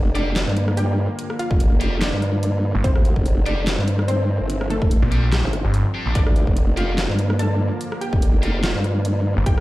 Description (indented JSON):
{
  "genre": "heavy wobble dubstep",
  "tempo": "145 BPM",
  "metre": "4/4",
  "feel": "swing 55% on 16ths, half-time",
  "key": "G minor",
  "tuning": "A4 = 445 Hz",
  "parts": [
    { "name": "wide unison pluck", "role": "melody", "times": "0.0-9.6 s", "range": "G3 to A5", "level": "-29 LUFS", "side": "equal", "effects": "cassette tape, tape echo" },
    { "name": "lush unison pad", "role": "sustained chords", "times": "0.0-9.6 s", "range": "D3 to D4", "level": "-30 LUFS", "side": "equal", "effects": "chorus, sidechain pumping" },
    { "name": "formant-sweep wobble bass", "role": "bass", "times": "0.0-9.6 s", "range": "F1 to G2", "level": "-21 LUFS", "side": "equal", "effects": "chorus, overdrive" },
    { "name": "heavy high-gain guitar", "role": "stabs", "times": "0.1-8.6 s", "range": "G3 to G4", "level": "-32 LUFS", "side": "left 1 dB", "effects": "distortion, tape echo" },
    { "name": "dubstep drum kit", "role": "drums", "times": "0.2-9.6 s", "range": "handclaps, hi-hat, rim click, snare drum", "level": "-27 LUFS", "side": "equal", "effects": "overdrive" },
    { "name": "electronic kick drum", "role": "drums", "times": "1.5-9.6 s", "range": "none", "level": "-18 LUFS", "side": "equal", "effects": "none" },
    { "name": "snarling distorted saw bass", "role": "bass", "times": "2.7-6.1, 9.4 s", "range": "G1 to Bb1", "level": "-19 LUFS", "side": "equal", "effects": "distortion, overdrive" }
  ],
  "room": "digital ambience",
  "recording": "played on a big sound system in a bare room, stone room reverb",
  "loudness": "-18 LUFS",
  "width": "side -17 dB against mid",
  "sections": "0.0-9.6 A section",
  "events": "none",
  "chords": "0.0 Gm",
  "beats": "0.36 0.77 | 1.19 1.60 2.01 2.43 | 2.84 3.26 3.67 4.08 | 4.50 4.91 5.33 5.74 | 6.15 6.57 6.98 7.39 | 7.81 8.22 8.63 9.05 | 9.46"
}